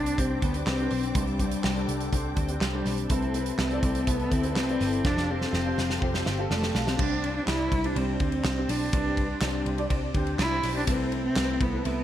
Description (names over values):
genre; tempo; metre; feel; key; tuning
piano-driven pop; 123 BPM; 4/4; straight; C major; A4 = 440 Hz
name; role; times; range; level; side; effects
dark cello; melody; 0.0-12.0 s; G3 to E4; -29 LUFS; left 1 dB; ping-pong delay
warm concert grand piano; accompaniment; 0.0-12.0 s; G2 to A5; -33 LUFS; left 2 dB; ensemble chorus
warm studio string section; sustained chords; 0.0-7.0 s; C4 to D6; -40 LUFS; left 2 dB; none
twelve-string electric guitar; riff; 0.0-12.0 s; C3 to C5; -37 LUFS; right 7 dB; analog chorus
vintage muted picked electric bass; bass; 0.0-12.0 s; F1 to D2; -31 LUFS; equal; none
loose indie drum kit; drums; 0.1-12.0 s; crash cymbal, handclaps, hi-hat, kick drum, ride cymbal, snare drum; -30 LUFS; equal; none
room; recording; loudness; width
light reverb, studio reverb; none; -24 LUFS; side -11 dB against mid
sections
0.0-7.0 A section; 7.0-12.0 B section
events
drum fill 5.0-7.0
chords
0.0 Csus2; 3.1 Amadd9/C; 5.0 Fadd9; 7.0 Csus2; 10.9 Amadd9/C